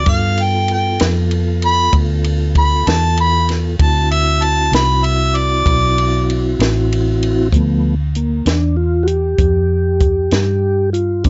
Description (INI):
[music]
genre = slow blues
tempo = 64 BPM (dotted quarters)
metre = 12/8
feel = straight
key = G mixolydian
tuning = A4 = 439 Hz
[part]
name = warm harmonica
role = melody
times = 0.0-6.6 s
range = D5 to B5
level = -18 LUFS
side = equal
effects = none
[part]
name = mellow tonewheel organ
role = sustained chords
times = 0.0-11.3 s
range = E3 to A4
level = -22 LUFS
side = equal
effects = slow rotary speaker
[part]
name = vintage muted fingered electric bass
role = bass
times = 0.0-11.3 s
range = A1 to G2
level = -19 LUFS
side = equal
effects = none
[part]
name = compact cocktail drum kit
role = drums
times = 0.1-11.3 s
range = hi-hat, kick drum, ride cymbal, snare drum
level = -22 LUFS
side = equal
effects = none
[sound]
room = little or no reverb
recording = nothing above 7.7 kHz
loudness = -15 LUFS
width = mono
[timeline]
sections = 0.0-7.5 A section; 7.5-11.3 A section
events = harmonica solo 0.0-7.5; tonewheel organ solo 7.5-11.3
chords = 0.1 G7; 3.8 D7; 7.5 G7(no3)